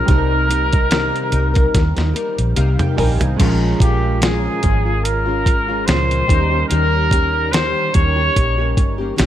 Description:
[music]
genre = indie pop, bedroom pop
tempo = 72 BPM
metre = 4/4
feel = swing 55% on 16ths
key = unclear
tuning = A4 = 440 Hz
[part]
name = breathy trumpet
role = melody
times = 0.0-9.2 s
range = G4 to Db5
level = -20 LUFS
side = equal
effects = wide subtle chorus, slapback echo
[part]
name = chorused retro synth keys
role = accompaniment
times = 0.0-9.3 s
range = G3 to Ab5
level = -26 LUFS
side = right 6 dB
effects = cassette tape
[part]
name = nylon-string guitar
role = accompaniment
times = 0.0-9.3 s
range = Bb2 to Bb4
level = -23 LUFS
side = left 5 dB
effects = ensemble chorus, warbly pitch drift
[part]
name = vintage muted fingered electric bass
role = bass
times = 0.1-9.3 s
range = G1 to Eb2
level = -19 LUFS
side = equal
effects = none
[part]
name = lo-fi sampler-style drum kit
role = drums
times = 0.1-9.3 s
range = crash cymbal, hi-hat, kick drum, snare drum, toms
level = -17 LUFS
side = equal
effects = overdrive
[sound]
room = little or no reverb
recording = none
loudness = -14 LUFS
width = side -11 dB against mid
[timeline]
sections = 0.0-3.4 A section; 3.4-9.3 B section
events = drum fill 1.7-3.4; synth keys fill 2.2-3.4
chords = 0.1 Cm7; 3.4 Bbm7; 6.3 Eb7

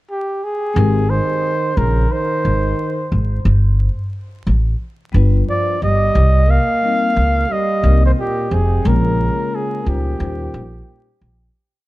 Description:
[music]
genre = hip hop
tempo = 89 BPM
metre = 4/4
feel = swing 58% on 16ths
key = Ab major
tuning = A4 = 439 Hz
[part]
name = breathy flugelhorn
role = melody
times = 0.1-11.2 s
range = G4 to F5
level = -20 LUFS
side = equal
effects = analog delay
[part]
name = vibraphone with soft mallets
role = accompaniment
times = 0.7-1.0, 5.1-10.6 s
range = G3 to C5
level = -25 LUFS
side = left 6 dB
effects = auto-pan, analog delay
[part]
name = upright bass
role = bass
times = 0.8-11.5 s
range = F1 to Eb2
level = -15 LUFS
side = equal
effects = none
[part]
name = breathy trombone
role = second line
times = 1.1-11.2 s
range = Bb2 to Bb3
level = -24 LUFS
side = right 4 dB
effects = none
[sound]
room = light reverb, small room reverb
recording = echo-heavy mix, vinyl crackle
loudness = -14 LUFS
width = side -18 dB against mid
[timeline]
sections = 0.0-0.8 pickup bar; 0.8-11.5 head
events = fade-out 8.8-11.5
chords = 0.0 N.C.; 0.8 Abadd9; 3.5 G; 6.2 Cm7; 8.8 Bbm7; 10.2 Eb13

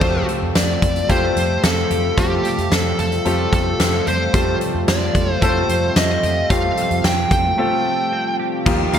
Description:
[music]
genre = 1980s-style pop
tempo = 111 BPM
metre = 4/4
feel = straight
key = unclear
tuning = A4 = 440 Hz
[part]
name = fuzz lead guitar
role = melody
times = 0.0-9.0 s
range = G4 to G5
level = -21 LUFS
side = equal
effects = distortion, digital delay
[part]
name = clear concert grand piano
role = accompaniment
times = 0.0-9.0 s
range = A3 to A4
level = -24 LUFS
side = left 2 dB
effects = none
[part]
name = sweeping resonant pad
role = sustained chords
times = 0.0-9.0 s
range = C3 to F4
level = -27 LUFS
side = left 1 dB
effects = chorus
[part]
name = twelve-string electric guitar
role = riff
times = 0.0-9.0 s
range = F3 to G4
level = -28 LUFS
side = right 5 dB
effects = analog chorus
[part]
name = vintage muted fingered electric bass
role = bass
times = 0.0-9.0 s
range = Eb2 to F2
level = -23 LUFS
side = equal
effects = none
[part]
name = huge arena drum kit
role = drums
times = 0.0-9.0 s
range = crash cymbal, hi-hat, kick drum, snare drum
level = -20 LUFS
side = equal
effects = none
[sound]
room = moderate lush hall reverb, RT60 1.9 s, studio ambience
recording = bright 1980s-style digital production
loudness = -15 LUFS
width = side -8 dB against mid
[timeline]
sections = 0.0-8.7 A section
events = break 7.6-8.7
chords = 0.0 Fadd9

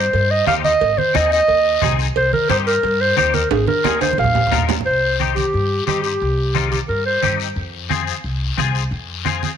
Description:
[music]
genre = latin, cumbia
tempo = 178 BPM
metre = 4/4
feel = straight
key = C minor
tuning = A4 = 440 Hz
[part]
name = mellow clarinet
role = melody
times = 0.0-7.4 s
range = G4 to F5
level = -17 LUFS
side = right 1 dB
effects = none
[part]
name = clean electric guitar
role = accompaniment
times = 0.0-9.5 s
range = C4 to Bb4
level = -24 LUFS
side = left 11 dB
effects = ensemble chorus
[part]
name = upright bass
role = bass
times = 0.0-9.5 s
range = Ab1 to G2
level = -23 LUFS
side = equal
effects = none
[part]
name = congas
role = percussion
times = 0.1-9.6 s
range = none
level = -25 LUFS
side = right 7 dB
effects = none
[part]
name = cowbell and timbales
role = percussion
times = 0.1-4.8 s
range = none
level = -25 LUFS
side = right 13 dB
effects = none
[part]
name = guiro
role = percussion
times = 0.1-9.6 s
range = none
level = -29 LUFS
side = left 14 dB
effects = none
[sound]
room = light reverb, small room ambience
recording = 1960s-style stereo with parts hard left and right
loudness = -15 LUFS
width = side -8 dB against mid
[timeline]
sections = 0.0-4.9 A section; 4.9-9.6 B section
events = drum fill 3.5-4.9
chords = 0.0 Cm; 0.8 Ab; 2.2 Cm; 3.5 Ab; 4.2 Bbsus4; 4.9 Cm; 7.6 Fm

